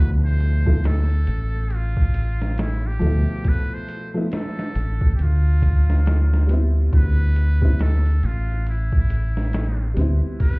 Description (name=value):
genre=trip hop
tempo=69 BPM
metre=4/4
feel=swing 60% on 16ths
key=unclear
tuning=A4 = 439 Hz
part: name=trumpet with metal mute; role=melody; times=0.0-10.6 s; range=E4 to C5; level=-34 LUFS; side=equal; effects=tape echo
part: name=dark upright piano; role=accompaniment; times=0.0-10.6 s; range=B2 to E4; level=-28 LUFS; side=equal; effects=harmonic tremolo, tape echo
part: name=deep dub fingered electric bass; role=bass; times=0.0-10.2 s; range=A1 to D2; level=-18 LUFS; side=equal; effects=none
part: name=boom bap sampler-style drum kit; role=drums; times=0.4-10.6 s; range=hi-hat, kick drum, snare drum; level=-21 LUFS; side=equal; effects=none
room=digital ambience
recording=heard muffled through a wall, club reverb, EQ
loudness=-18 LUFS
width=side -28 dB against mid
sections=0.0-10.6 A section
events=none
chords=0.0 Am9